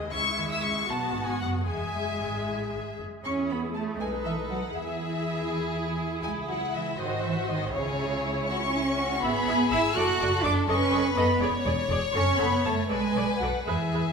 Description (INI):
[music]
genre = quick classical-period movement for string orchestra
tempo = 75-83 BPM (dotted quarters)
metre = 6/8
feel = rubato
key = E major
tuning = A4 = 440 Hz
[part]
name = warm studio violin section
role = second line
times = 0.0-14.1 s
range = C#5 to F#6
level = -32 LUFS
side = left 1 dB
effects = none
[part]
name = warm chamber viola section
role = accompaniment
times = 0.0-14.0 s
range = G#3 to E5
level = -32 LUFS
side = equal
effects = none
[part]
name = rich chamber double bass section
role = bass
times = 0.0-14.0 s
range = E1 to E2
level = -34 LUFS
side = right 2 dB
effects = none
[part]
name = warm chamber cello section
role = bass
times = 0.0-14.1 s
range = E2 to F#4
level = -30 LUFS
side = right 3 dB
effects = none
[part]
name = warm chamber violin section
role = melody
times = 0.1-14.1 s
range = E4 to E6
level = -31 LUFS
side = left 6 dB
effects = none
[sound]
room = wet scoring stage reverb, RT60 1.9 s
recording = minimal, uncompressed stereo recording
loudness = -25 LUFS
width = side -5 dB against mid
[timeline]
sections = 0.0-3.2 A section; 3.2-14.1 B section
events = none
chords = 0.1 C#m; 0.9 B5; 1.7 E; 4.0 B7; 4.7 E; 6.2 C#m; 7.0 G#7; 7.7 C#m; 9.2 E/G#; 10.0 D/F#; 10.7 B7; 11.4 E7; 12.1 F#m; 12.9 Bm7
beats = | 0.12 0.88 | 1.66 2.46 | 3.24 4.00 | 4.75 5.49 | 6.24 6.98 | 7.72 8.48 | 9.22 9.95 | 10.68 11.40 | 12.15 12.90 | 13.67